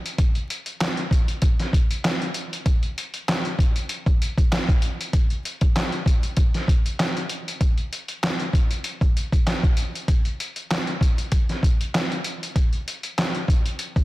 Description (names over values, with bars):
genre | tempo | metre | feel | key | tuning
hip hop | 97 BPM | 4/4 | swing 54% on 16ths | none | none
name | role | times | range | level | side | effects
trip hop sampler-style drum kit | drums | 0.1-14.0 s | handclaps, hi-hat, kick drum, snare drum | -20 LUFS | equal | none
room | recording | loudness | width
light reverb | dense, heavily limited modern master, vinyl crackle | -20 LUFS | side -18 dB against mid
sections
0.0-14.0 A section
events
none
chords
none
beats
| 0.19 0.80 1.42 2.04 | 2.66 3.28 3.90 4.51 | 5.13 5.75 6.37 6.99 | 7.61 8.23 8.85 9.46 | 10.08 10.70 11.32 11.94 | 12.56 13.18 13.79